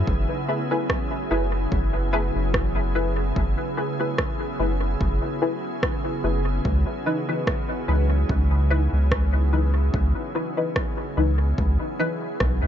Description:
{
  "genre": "ambient dub",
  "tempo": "73 BPM",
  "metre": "4/4",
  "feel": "swing 55% on 16ths",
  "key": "C# minor",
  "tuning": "A4 = 443 Hz",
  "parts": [
    { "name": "soft additive organ-like pad", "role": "sustained chords", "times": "0.0-12.7 s", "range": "C#3 to G#4", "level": "-29 LUFS", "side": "right 1 dB", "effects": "ensemble chorus, built-in reverb" },
    { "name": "soft dub sub bass", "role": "bass", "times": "0.0-12.7 s", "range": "F#1 to C#2", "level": "-22 LUFS", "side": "equal", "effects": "none" },
    { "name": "electronic kick drum", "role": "drums", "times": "0.1-12.6 s", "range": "none", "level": "-27 LUFS", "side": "equal", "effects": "overdrive, small room ambience" },
    { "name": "filtered dub chord stab", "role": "stabs", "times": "0.5-12.3 s", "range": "E3 to B4", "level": "-28 LUFS", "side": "left 2 dB", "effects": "ensemble chorus, dub echo" },
    { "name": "electronic rim click", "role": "drums", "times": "0.9-12.6 s", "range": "none", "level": "-31 LUFS", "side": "right 1 dB", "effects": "overdrive, small room ambience, dub echo" }
  ],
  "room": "digital ambience",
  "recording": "nothing above 7.6 kHz",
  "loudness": "-21 LUFS",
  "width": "side -10 dB against mid",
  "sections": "0.0-12.7 A section",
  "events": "none",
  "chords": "0.1 F#m11; 6.7 C#m9",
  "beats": "| 0.08 0.90 1.72 2.54 | 3.36 4.18 5.01 5.83 | 6.65 7.47 8.29 9.12 | 9.94 10.76 11.58 12.40"
}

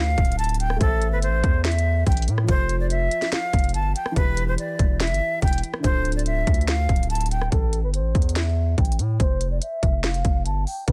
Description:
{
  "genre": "hip hop, trap",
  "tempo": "143 BPM",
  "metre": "4/4",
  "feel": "half-time",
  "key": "unclear",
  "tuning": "A4 = 441 Hz",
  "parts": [
    { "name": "jazz flute", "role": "melody", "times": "0.0-10.9 s", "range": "A4 to A5", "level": "-30 LUFS", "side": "equal", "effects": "low-pass filter" },
    { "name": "dark concert grand piano", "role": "accompaniment", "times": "0.0-7.5 s", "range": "D3 to E5", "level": "-36 LUFS", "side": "equal", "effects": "low-pass filter" },
    { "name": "distorted 808-style bass", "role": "bass", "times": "0.0-10.9 s", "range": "D1 to A2", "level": "-25 LUFS", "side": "equal", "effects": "distortion" },
    { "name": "trap drum kit", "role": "drums", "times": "0.2-10.9 s", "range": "hi-hat, kick drum, rim click, snare drum", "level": "-25 LUFS", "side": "equal", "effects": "vintage 12-bit sampler grit" }
  ],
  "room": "little or no reverb",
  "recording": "dense, heavily limited modern master",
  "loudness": "-22 LUFS",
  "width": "mono",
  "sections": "0.0-7.5 A section; 7.5-10.9 B section",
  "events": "none",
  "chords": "0.0 Dm; 0.8 Am; 2.5 F; 4.2 Em; 5.8 Dm; 7.5 Am; 9.2 Fmaj7(no3)",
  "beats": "0.39 | 0.81 1.23 1.65 2.07 | 2.48 2.90 3.33 3.74 | 4.16 4.58 5.00 5.42 | 5.84 6.26 6.68 7.10 | 7.52 7.94 8.36 8.78 | 9.20 9.62 10.04 10.46 | 10.88"
}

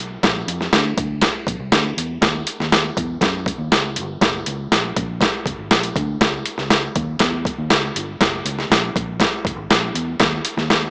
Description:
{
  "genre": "uptempo 1960s-style soul",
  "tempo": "120 BPM",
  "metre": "4/4",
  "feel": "straight",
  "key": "unclear",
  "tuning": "A4 = 440 Hz",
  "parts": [
    { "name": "vintage muted fingered electric bass", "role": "bass", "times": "0.0-10.9 s", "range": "F#1 to F#2", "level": "-28 LUFS", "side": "equal", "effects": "none" },
    { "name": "boom bap sampler-style drum kit", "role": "drums", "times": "0.2-10.8 s", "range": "hi-hat, kick drum, snare drum", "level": "-20 LUFS", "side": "equal", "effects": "none" }
  ],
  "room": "moderate plate reverb, RT60 1.8 s",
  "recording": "small speaker sound",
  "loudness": "-20 LUFS",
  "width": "mono",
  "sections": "0.0-10.9 A section",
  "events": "none",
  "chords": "none",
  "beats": "| 0.23 0.73 1.22 1.72 | 2.22 2.72 3.22 3.72 | 4.22 4.71 5.21 5.71 | 6.21 6.71 7.21 7.71 | 8.20 8.70 9.20 9.70 | 10.19 10.69"
}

